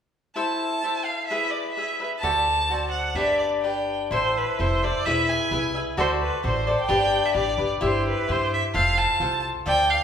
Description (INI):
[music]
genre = mexican folk, mariachi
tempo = 129 BPM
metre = 2/4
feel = rubato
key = A minor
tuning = A4 = 440 Hz
[part]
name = rich violin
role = melody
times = 0.4-10.0 s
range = B4 to A5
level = -24 LUFS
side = right 1 dB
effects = none
[part]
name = cavaquinho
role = accompaniment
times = 0.4-10.0 s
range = D4 to F5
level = -25 LUFS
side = left 2 dB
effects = none
[part]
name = upright bass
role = bass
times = 2.2-10.0 s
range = E1 to G2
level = -29 LUFS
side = right 1 dB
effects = none
[sound]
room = wet large studio reverb, RT60 1.4 s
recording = band playing live in one room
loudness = -21 LUFS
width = side -8 dB against mid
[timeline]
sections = 0.4-4.1 A section; 4.1-10.0 B section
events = none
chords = 0.4 Am; 1.3 E; 2.2 D7; 3.2 G; 4.1 Am; 5.1 E; 6.0 D7; 6.9 G; 7.8 C/G; 8.8 F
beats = | 0.36 0.84 | 1.30 1.77 | 2.23 2.69 | 3.16 3.63 | 4.12 4.60 | 5.07 5.52 | 5.98 6.43 | 6.89 7.36 | 7.83 8.30 | 8.76 9.21 | 9.67